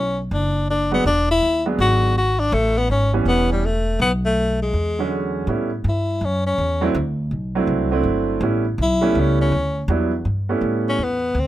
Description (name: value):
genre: jazz, small-group swing and bop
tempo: 163 BPM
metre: 4/4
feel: swing 63% on 8ths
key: A mixolydian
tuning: A4 = 441 Hz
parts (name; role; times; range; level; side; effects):
- clear tenor saxophone; melody; 0.0-11.5 s; G3 to F#4; -20 LUFS; left 2 dB; none
- upright bass; bass; 0.0-11.5 s; E1 to A2; -22 LUFS; equal; none
- clear concert grand piano; accompaniment; 0.9-11.0 s; D3 to E4; -21 LUFS; right 3 dB; none
room: little or no reverb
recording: close, detailed microphones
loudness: -18 LUFS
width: side -14 dB against mid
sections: 0.0-5.5 A section; 5.5-11.5 B section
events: tenor saxophone solo 5.5-11.5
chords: 0.0 Bm; 1.1 E9; 2.5 A9; 4.0 N.C.; 4.7 E13; 5.5 A9; 6.9 D9; 8.4 A9; 9.9 Em7; 10.6 A9